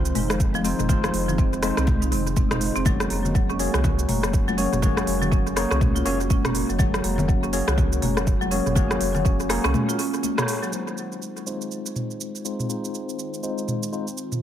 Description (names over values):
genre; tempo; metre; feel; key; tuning
afro house; 122 BPM; 4/4; swing 60% on 16ths; F phrygian; A4 = 440 Hz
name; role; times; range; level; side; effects
warm analog pad; sustained chords; 0.0-14.4 s; Eb3 to Gb4; -32 LUFS; right 1 dB; chorus, vintage 12-bit sampler grit, sidechain pumping
marimba with medium hard mallets; arpeggios; 0.0-10.7 s; C3 to Gb4; -28 LUFS; right 2 dB; sidechain pumping, analog delay
bell-like tine electric piano; stabs; 0.0-14.1 s; Ab3 to Db5; -29 LUFS; left 3 dB; medium stereo tremolo, vintage 12-bit sampler grit, sidechain pumping, low-pass filter, tape echo
warm sub bass; bass; 0.0-9.7 s; F1 to C2; -28 LUFS; equal; sidechain pumping
afro-pop drum kit; drums; 0.1-14.4 s; hi-hat, rim click, shaker, toms; -28 LUFS; right 1 dB; tape echo
congas; percussion; 0.2-10.4 s; none; -30 LUFS; left 4 dB; tape echo
electronic kick drum; drums; 0.4-9.4 s; none; -22 LUFS; equal; none
room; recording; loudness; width
moderate spring reverb, RT60 2.0 s; echo-heavy mix; -21 LUFS; side -10 dB against mid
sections
0.0-10.7 A section; 10.7-14.4 B section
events
band accent 10.4; filter sweep on analog synth pad 10.7-14.4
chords
0.0 Fm7; 2.9 Gbadd9/F; 10.7 Fm7